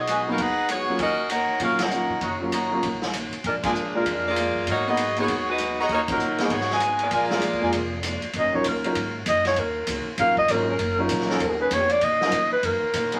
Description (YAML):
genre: jazz, big band swing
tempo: 196 BPM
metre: 4/4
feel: swing 62% on 8ths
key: Eb minor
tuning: A4 = 439 Hz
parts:
  - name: bright saxophone section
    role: melody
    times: 0.0-8.0 s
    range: F3 to Gb5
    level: -26 LUFS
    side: equal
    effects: none
  - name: upright bass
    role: bass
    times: 0.0-13.2 s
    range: Eb1 to Db3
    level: -38 LUFS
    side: equal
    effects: none
  - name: vintage hollow-body jazz guitar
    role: accompaniment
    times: 0.1-13.2 s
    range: Ab2 to Gb4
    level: -38 LUFS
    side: equal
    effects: none
  - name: clear trumpet section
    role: stabs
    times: 0.1-0.2, 2.2-7.7 s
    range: F4 to Bb5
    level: -28 LUFS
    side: equal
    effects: none
  - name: swinging big-band drum kit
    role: drums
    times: 0.1-13.2 s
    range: hi-hat, kick drum, ride cymbal, snare drum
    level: -33 LUFS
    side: equal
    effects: none
  - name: warm upright piano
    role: accompaniment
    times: 0.3-12.3 s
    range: Gb3 to Db5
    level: -30 LUFS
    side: equal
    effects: none
  - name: breathy clarinet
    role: melody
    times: 8.4-13.2 s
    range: A4 to F5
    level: -24 LUFS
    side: equal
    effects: none
  - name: warm trombone section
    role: sustained chords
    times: 8.4-13.2 s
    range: Gb3 to Bb4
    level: -33 LUFS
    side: equal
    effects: none
room: wet studio reverb, RT60 0.6 s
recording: vinyl crackle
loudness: -24 LUFS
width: mono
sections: 0.0-8.3 A section; 8.3-13.2 B section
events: band accent 1.8, 3.6, 6.0; clarinet solo 8.3-13.2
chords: 0.0 Abm7; 1.0 Ebm7; 3.4 Bb7; 4.7 Abm7; 5.9 Ebm7; 6.5 Abm7; 7.1 Bb7; 8.3 Ebm7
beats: 0.07 0.38 0.69 | 0.99 1.30 1.60 1.91 | 2.22 2.52 2.83 3.13 | 3.44 3.75 4.05 4.36 | 4.67 4.97 5.28 5.59 | 5.89 6.20 6.51 6.81 | 7.12 7.43 7.73 8.04 | 8.35 8.65 8.96 9.27 | 9.57 9.88 10.18 10.49 | 10.80 11.10 11.41 11.71 | 12.02 12.33 12.63 12.94